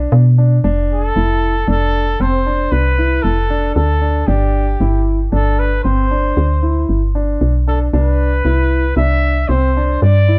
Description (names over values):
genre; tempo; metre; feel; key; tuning
progressive instrumental, band music in an uneven meter; 115 BPM; 7/4; straight; unclear; A4 = 440 Hz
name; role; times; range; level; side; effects
warm grand piano; arpeggios; 0.0-10.4 s; C4 to E4; -24 LUFS; equal; none
woody FM bass; bass; 0.0-10.4 s; F1 to B2; -16 LUFS; equal; none
mellow trumpet; melody; 0.9-10.4 s; G4 to E5; -22 LUFS; equal; tape echo
room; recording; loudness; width
light reverb; dark, warm production; -15 LUFS; mono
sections
0.0-10.4 A section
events
none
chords
0.0 Bm; 0.6 Fmaj7; 4.3 Gsus4; 7.9 Cmaj7